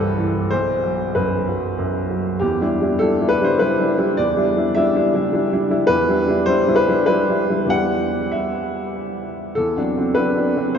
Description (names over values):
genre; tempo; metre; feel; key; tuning
neoclassical minimalist piano; 91-106 BPM; 3/4; rubato; E minor; A4 = 440 Hz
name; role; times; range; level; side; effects
warm baby grand piano; solo; 0.0-10.8 s; B1 to F#5; -17 LUFS; equal; none
room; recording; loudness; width
wet cathedral reverb, RT60 6.0 s; in a vast, echoing space, nothing above 7.5 kHz; -17 LUFS; side -7 dB against mid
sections
0.0-2.4 A section; 2.4-10.8 B section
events
none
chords
0.0 Am7/C; 0.5 B5; 2.4 Em7; 9.6 D7/E